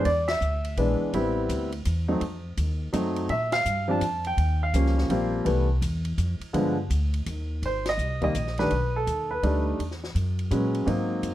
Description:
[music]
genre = jazz piano trio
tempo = 166 BPM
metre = 3/4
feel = swing 64% on 8ths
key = unclear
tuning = A4 = 436 Hz
[part]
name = warm grand piano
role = melody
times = 0.0-11.3 s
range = C3 to A5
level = -25 LUFS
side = equal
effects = none
[part]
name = upright bass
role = bass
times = 0.0-11.3 s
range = Ab1 to Bb2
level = -27 LUFS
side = equal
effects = none
[part]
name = compact cocktail drum kit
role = drums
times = 0.1-11.3 s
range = hi-hat, kick drum, ride cymbal, snare drum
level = -39 LUFS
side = left 2 dB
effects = none
[sound]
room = light reverb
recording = dark, warm production, faint mains hum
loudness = -24 LUFS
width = side -14 dB against mid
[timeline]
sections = 0.0-7.6 A section; 7.6-11.3 B section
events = band accent 0.2, 3.5, 7.8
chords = 0.1 E7; 1.1 Am9; 2.2 F7b9; 3.3 Bb5; 4.4 Eb9; 5.5 Fmaj7(no3); 6.5 G7b9; 7.3 N.C.; 7.6 Abmaj9; 8.7 B7alt; 9.8 E69

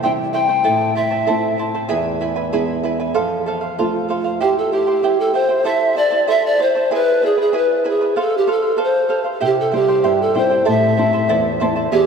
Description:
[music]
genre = andean folk, Andean ensemble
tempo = 96 BPM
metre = 2/4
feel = straight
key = A minor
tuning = A4 = 440 Hz
[part]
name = mellow hollow polished pan flute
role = melody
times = 0.0-1.6, 4.4-12.1 s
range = G4 to G5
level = -16 LUFS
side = equal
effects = none
[part]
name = charango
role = accompaniment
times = 0.0-12.1 s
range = E4 to A5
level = -20 LUFS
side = right 5 dB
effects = none
[part]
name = nylon-string guitar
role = accompaniment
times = 0.0-4.4, 9.4-12.1 s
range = E2 to F4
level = -23 LUFS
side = left 2 dB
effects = none
[sound]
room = wet cathedral reverb, RT60 5.5 s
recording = recorded in a church or concert hall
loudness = -15 LUFS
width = side -6 dB against mid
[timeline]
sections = 0.0-4.4 A section; 4.4-12.1 B section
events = none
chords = 0.0 C; 0.7 Am; 1.9 E; 3.2 F; 4.4 C; 5.7 Am; 6.9 E; 8.2 F; 9.4 C; 10.7 Am

